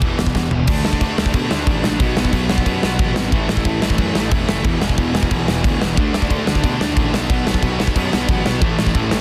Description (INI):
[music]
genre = punk rock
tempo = 182 BPM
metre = 4/4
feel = straight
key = unclear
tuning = A4 = 440 Hz
[part]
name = distorted electric guitar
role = riff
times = 0.0-9.2 s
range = E2 to D4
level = -26 LUFS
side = equal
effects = distortion
[part]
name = sludgy distorted guitar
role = riff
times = 0.0-9.2 s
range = E2 to D4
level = -26 LUFS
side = equal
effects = overdrive
[part]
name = sludgy distorted guitar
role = riff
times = 0.0-0.7, 6.0-9.2 s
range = E2 to D4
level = -30 LUFS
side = equal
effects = none
[part]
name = fuzz picked electric bass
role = bass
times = 0.0-9.2 s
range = E1 to B2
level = -26 LUFS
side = equal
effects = overdrive
[part]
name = big rock drum kit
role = drums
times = 0.0-9.2 s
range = crash cymbal, kick drum, snare drum, toms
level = -21 LUFS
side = equal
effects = none
[sound]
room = little or no reverb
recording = dense, heavily limited modern master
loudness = -18 LUFS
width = mono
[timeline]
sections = 0.7-9.2 A section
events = drum fill 0.4-0.7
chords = 0.0 E5; 0.7 D5; 2.0 B5; 3.3 A5; 4.7 E5; 6.0 D5; 7.3 B5; 8.6 A5